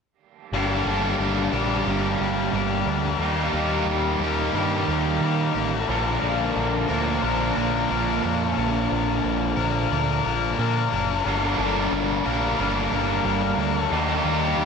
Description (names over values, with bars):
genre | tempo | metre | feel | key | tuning
rock | 90 BPM | 4/4 | straight | G minor | A4 = 436 Hz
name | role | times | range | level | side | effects
biting overdriven guitar | riff | 0.5-14.7 s | G2 to Bb4 | -24 LUFS | left 7 dB | wide subtle chorus
overdriven electric guitar | riff | 0.5-14.7 s | G2 to Bb4 | -26 LUFS | right 8 dB | reverse reverb
growling picked electric bass | bass | 0.5-14.7 s | F#1 to Eb3 | -28 LUFS | equal | overdrive
room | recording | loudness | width
wet huge ambient reverb, RT60 9.0 s | dreamy mix soaked in reverb | -21 LUFS | side -6 dB against mid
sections
0.5-14.7 A section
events
none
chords
0.5 Gm; 3.2 Eb; 5.9 Bb; 11.2 Gm; 13.9 Eb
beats
| 0.54 1.21 1.87 2.54 | 3.21 3.88 4.55 5.22 | 5.89 6.56 7.23 7.90 | 8.57 9.24 9.91 10.58 | 11.25 11.92 12.59 13.25 | 13.91 14.58